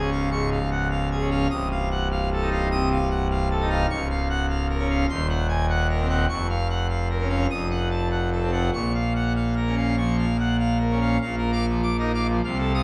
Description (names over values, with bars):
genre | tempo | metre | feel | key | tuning
classical, organ toccata | 99 BPM | 4/4 | straight | Bb minor | A4 = 439 Hz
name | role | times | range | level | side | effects
pipe organ, full organ | solo | 0.0-12.8 s | C1 to Eb6 | -24 LUFS | equal | none
room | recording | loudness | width
wet stone room reverb, RT60 1.3 s | none | -24 LUFS | mono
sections
0.0-11.2 A section; 11.2-12.8 B section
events
none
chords
0.0 Db; 1.5 F7/C; 3.9 Bbm/Db; 5.1 Cm7b5/Eb; 6.3 Bbm/F; 7.5 F7b9; 8.7 Bbm; 11.2 Bb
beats
0.32 0.91 | 1.51 2.11 2.71 3.30 | 3.90 4.49 5.09 5.69 | 6.29 6.90 7.50 8.11 | 8.73 9.36 9.98 10.60 | 11.21 11.83 12.43